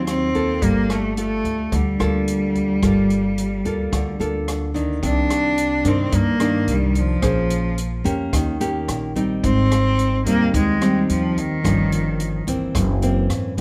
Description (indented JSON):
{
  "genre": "bossa nova",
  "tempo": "109 BPM",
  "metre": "4/4",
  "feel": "straight",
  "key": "G minor, C minor from 5.0 s",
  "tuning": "A4 = 440 Hz",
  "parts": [
    { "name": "rich cello", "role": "melody", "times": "0.0-12.5 s", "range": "Eb3 to D4", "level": "-24 LUFS", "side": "equal", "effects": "plate reverb" },
    { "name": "nylon-string guitar", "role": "accompaniment", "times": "0.0-13.6 s", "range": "F#2 to C5", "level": "-25 LUFS", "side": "equal", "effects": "none" },
    { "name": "upright bass", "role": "bass", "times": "0.0-13.6 s", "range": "F#1 to Ab2", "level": "-26 LUFS", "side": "equal", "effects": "none" },
    { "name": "open jazz drum kit", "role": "drums", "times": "0.1-13.6 s", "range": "hi-hat, kick drum, rim click", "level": "-31 LUFS", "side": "equal", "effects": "none" }
  ],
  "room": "moderate large studio reverb, RT60 0.9 s",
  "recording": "none",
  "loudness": "-20 LUFS",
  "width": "mono",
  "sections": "0.0-5.0 A section; 5.0-13.6 B section",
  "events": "none",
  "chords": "0.0 Ab13 (rootless); 0.6 Gm9; 5.0 Cm9; 7.2 Bbm9; 8.3 Eb7; 9.4 Abmaj7; 11.6 Gm7b5; 12.7 F#7#11",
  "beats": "0.07 | 0.62 1.17 1.72 2.27 | 2.82 3.37 3.92 4.48 | 5.03 5.58 6.13 6.68 | 7.23 7.78 8.34 8.89 | 9.44 9.99 10.54 11.09 | 11.64 12.20 12.75 13.30"
}